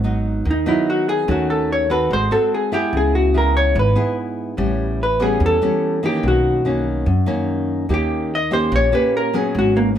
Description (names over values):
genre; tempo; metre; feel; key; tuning
bossa nova; 145 BPM; 4/4; straight; unclear; A4 = 442 Hz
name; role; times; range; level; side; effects
nylon-string guitar; accompaniment; 0.0-10.0 s; F#2 to A4; -21 LUFS; equal; none
upright bass; bass; 0.0-10.0 s; G#1 to F#2; -20 LUFS; equal; none
vintage hollow-body jazz guitar; melody; 0.5-9.9 s; A#3 to D#5; -19 LUFS; equal; plate reverb
room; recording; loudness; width
moderate studio reverb, RT60 0.6 s; none; -16 LUFS; side -10 dB against mid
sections
0.0-10.0 A section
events
hollow-body jazz guitar solo 0.0-10.0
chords
0.0 G#m7; 1.3 D#m7b5; 2.1 G#7b9; 2.9 C#m7; 4.6 A9; 6.2 Bmaj9; 7.9 D#7